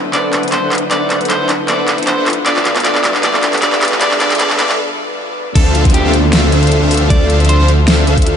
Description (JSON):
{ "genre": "future bass", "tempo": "155 BPM", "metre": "4/4", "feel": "swing 54% on 16ths, half-time", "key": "D dorian", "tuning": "A4 = 439 Hz", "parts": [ { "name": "rich studio string section", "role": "sustained chords", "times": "0.0-8.4 s", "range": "D3 to B4", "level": "-25 LUFS", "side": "left 1 dB", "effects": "sidechain pumping" }, { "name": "concert harp", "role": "arpeggios", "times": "0.0-8.4 s", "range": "B3 to C5", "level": "-24 LUFS", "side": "left 1 dB", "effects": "sidechain pumping, tape echo" }, { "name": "riser and downlifter", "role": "sound effects", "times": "0.0-8.4 s", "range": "none", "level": "-24 LUFS", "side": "right 1 dB", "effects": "none" }, { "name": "electric guitar at the edge of break-up", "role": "melody", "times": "0.1-7.7 s", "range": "G4 to D5", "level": "-20 LUFS", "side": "equal", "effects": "sidechain pumping, low-pass filter, ping-pong delay" }, { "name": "soft supersaw", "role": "riff", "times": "0.1-8.3 s", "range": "D4 to F#5", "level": "-17 LUFS", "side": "equal", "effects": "sidechain pumping" }, { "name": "dubstep drum kit", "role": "drums", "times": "0.1-8.3 s", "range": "crash cymbal, handclaps, hi-hat, snare drum", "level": "-16 LUFS", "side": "equal", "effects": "overdrive" }, { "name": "wide detuned saw bass", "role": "bass", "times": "5.6-8.3 s", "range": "D2", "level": "-12 LUFS", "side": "equal", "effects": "chorus, sidechain pumping" }, { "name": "electronic kick drum", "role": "drums", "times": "5.6-8.2 s", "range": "none", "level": "-11 LUFS", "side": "equal", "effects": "overdrive" } ], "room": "light reverb", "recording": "high-pass filter, nothing above 10.7 kHz", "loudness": "-10 LUFS", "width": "side -8 dB against mid", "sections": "0.0-5.6 A section; 5.6-8.4 B section", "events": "build-up 0.0-5.6; drum fill 0.0-4.8; riser 0.0-4.8; filter sweep on supersaw synth 0.0-5.6; break 4.8-5.6; drop 5.6-8.4", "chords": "0.0 D13; 2.5 G7; 5.6 Dm7" }